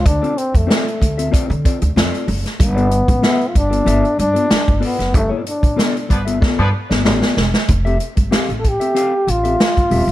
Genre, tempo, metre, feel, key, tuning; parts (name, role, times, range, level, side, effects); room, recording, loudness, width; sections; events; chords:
funk; 94 BPM; 4/4; straight; A4 = 440 Hz
mellow trombone; melody; 0.0-10.1 s; A3 to A4; -18 LUFS; left 1 dB
mellow electric guitar; accompaniment; 0.0-10.1 s; B3 to F5; -22 LUFS; left 4 dB; spring reverb
upright bass; bass; 0.0-10.1 s; Eb1 to D3; -19 LUFS; equal
swinging big-band drum kit; drums; 0.1-10.1 s; hi-hat, kick drum, snare drum; -17 LUFS; equal
warm horn section; second line; 6.1-6.7 s; F3 to B4; -24 LUFS; equal
light reverb, small room ambience; -14 LUFS; side -14 dB against mid
0.0-7.7 A section; 7.7-10.1 B section
band accent 5.1-7.7; drum fill 6.4-7.7
0.0 Dm7; 2.6 G9; 7.7 Fmaj9